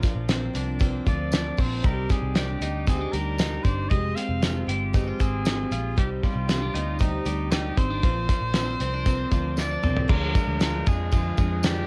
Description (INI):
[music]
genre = jangly indie pop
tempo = 116 BPM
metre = 4/4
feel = straight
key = C minor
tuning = A4 = 435 Hz
[part]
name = picked steel-string acoustic guitar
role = accompaniment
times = 0.0-11.9 s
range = C3 to D5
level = -38 LUFS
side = equal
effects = none
[part]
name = twelve-string electric guitar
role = arpeggios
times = 0.0-11.9 s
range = F3 to G4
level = -33 LUFS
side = equal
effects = none
[part]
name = cloth-damped thuddy drum kit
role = drums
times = 0.0-11.8 s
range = crash cymbal, hi-hat, kick drum, ride cymbal, snare drum, toms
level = -27 LUFS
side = equal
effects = cassette tape
[part]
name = tambourine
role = percussion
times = 0.0-11.8 s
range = none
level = -47 LUFS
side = equal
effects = none
[part]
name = vintage muted picked electric bass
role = bass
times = 0.2-11.8 s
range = F1 to F2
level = -31 LUFS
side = equal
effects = none
[part]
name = clear trumpet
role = melody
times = 1.1-11.9 s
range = Eb4 to F5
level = -35 LUFS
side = equal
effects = none
[sound]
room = light reverb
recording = home recording on cassette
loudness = -25 LUFS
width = mono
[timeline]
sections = 0.0-10.1 A section; 10.1-11.9 B section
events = drum fill 9.6-10.1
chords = 0.0 Bbadd9; 1.8 Cmadd9; 3.9 Fmadd9; 6.0 Cmadd9; 8.0 Bbadd9; 10.1 Ddim